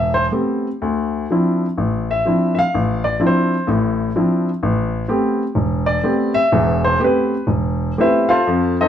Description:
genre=solo jazz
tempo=125 BPM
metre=4/4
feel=swing 66% on 8ths, rubato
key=A minor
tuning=A4 = 444 Hz
part: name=warm baby grand piano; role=solo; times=0.0-8.9 s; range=E1 to F5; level=-15 LUFS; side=equal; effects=none
room=moderate studio reverb, RT60 0.9 s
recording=band playing live in one room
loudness=-15 LUFS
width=side -9 dB against mid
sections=0.0-8.9 A section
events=grand piano solo 0.0-8.9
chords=0.0 Am9; 0.8 Dm9; 4.6 Am9

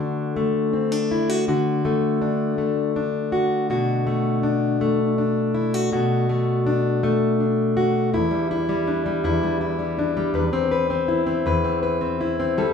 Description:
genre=pop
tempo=54 BPM (dotted quarters)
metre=6/8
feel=straight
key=E minor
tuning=A4 = 443 Hz
part: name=fingerpicked plugged-in steel-string acoustic guitar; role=solo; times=0.0-12.7 s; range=E2 to B4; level=-20 LUFS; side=left 2 dB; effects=none
room=wet studio reverb, RT60 0.6 s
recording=band playing live in one room, studio reverb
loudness=-20 LUFS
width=side -6 dB against mid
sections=0.0-8.1 A section; 8.1-12.7 B section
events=none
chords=0.0 D; 3.7 Bm7; 8.1 Em7; 10.4 Cmaj7/E

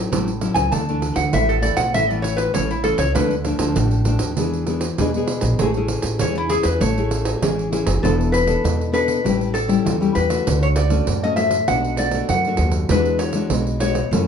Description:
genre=samba and choro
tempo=98 BPM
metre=4/4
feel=straight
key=A major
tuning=A4 = 440 Hz
part: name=nylon-string guitar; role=accompaniment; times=0.0-14.3 s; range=F#2 to A4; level=-22 LUFS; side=left 3 dB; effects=none
part: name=upright bass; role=bass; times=0.0-14.3 s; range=E1 to F#2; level=-23 LUFS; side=right 1 dB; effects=none
part: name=pandeiro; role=percussion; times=0.1-14.3 s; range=none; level=-25 LUFS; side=right 6 dB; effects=none
part: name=metal-body resonator slide guitar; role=melody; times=0.5-14.3 s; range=E4 to A5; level=-22 LUFS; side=left 1 dB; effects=none
room=light reverb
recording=nothing above 11.0 kHz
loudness=-17 LUFS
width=side -7 dB against mid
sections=0.0-8.0 A section; 8.0-14.3 B section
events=resonator guitar played with a steel bar solo 0.0-8.0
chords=0.0 F#m7/A; 0.7 Dsus2; 1.9 A; 3.2 Dm; 4.4 E7; 5.6 Amaj7; 8.0 E7sus4; 9.2 A7; 10.5 Dmaj7; 11.7 Bm7; 12.9 E9

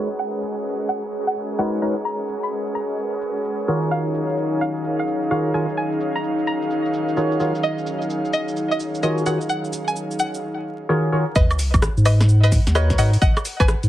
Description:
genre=UK garage, two-step garage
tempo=129 BPM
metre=4/4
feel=swing 64% on 16ths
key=G# dorian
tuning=A4 = 445 Hz
part: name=soft string machine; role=sustained chords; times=0.0-10.4 s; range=D#3 to E#5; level=-29 LUFS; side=left 1 dB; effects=ensemble chorus, sidechain pumping
part: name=percussive organ stab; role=stabs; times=0.0-13.1 s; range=D#3 to C#5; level=-23 LUFS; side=equal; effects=lush chorus, tape echo
part: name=airy breathy pad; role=texture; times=0.0-13.9 s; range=D#4 to F#5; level=-26 LUFS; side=equal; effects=chorus, sidechain pumping
part: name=house drum kit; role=drums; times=0.1-13.9 s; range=hi-hat, rim click, shaker, snare drum, woodblock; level=-28 LUFS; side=right 1 dB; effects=none
part: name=string-like resonator pluck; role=melody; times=0.2-13.8 s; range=B4 to B5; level=-25 LUFS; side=equal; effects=chorus, phaser, tape echo
part: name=saturated sub bass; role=bass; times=11.4-13.9 s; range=G#1 to G#2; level=-16 LUFS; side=equal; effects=none
part: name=electronic kick drum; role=drums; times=11.4-13.7 s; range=none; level=-19 LUFS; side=equal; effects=none
part: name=sub drop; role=sound effects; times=11.4-13.2 s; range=none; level=-25 LUFS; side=equal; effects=none
room=moderate studio reverb, RT60 0.7 s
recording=heavily compressed radio sound, vinyl crackle, low-pass filter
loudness=-19 LUFS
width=side -13 dB against mid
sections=0.0-11.4 A section; 11.4-13.9 B section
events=filter sweep 0.0-11.4; drop 11.4-13.9; impact 11.4-13.2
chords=0.0 G#m11; 3.7 D#m11; 11.4 G#m11

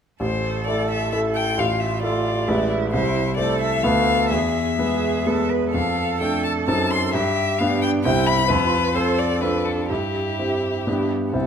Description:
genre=quick classical-period movement for piano trio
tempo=123-135 BPM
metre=3/4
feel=rubato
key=A minor, C major from 5.7 s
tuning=A4 = 440 Hz
part: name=rich violin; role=melody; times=0.2-11.5 s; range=G4 to C6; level=-24 LUFS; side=left 6 dB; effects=none
part: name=rich cello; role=second line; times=0.2-11.1 s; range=D4 to B4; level=-27 LUFS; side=right 9 dB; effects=none
part: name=bright concert grand piano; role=accompaniment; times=0.2-11.5 s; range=A1 to C5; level=-21 LUFS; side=equal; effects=none
room=moderate scoring stage reverb, RT60 1.6 s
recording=close, detailed microphones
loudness=-19 LUFS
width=side -7 dB against mid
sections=0.2-11.3 A section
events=none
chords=0.2 Am; 1.6 Dm/A; 2.5 E7/A; 2.9 Am/C; 3.8 Bm7b5/D; 4.3 E; 5.7 Dm/F; 6.7 F#dim7; 7.1 G; 8.0 C; 8.5 F; 9.9 C/G; 10.9 G

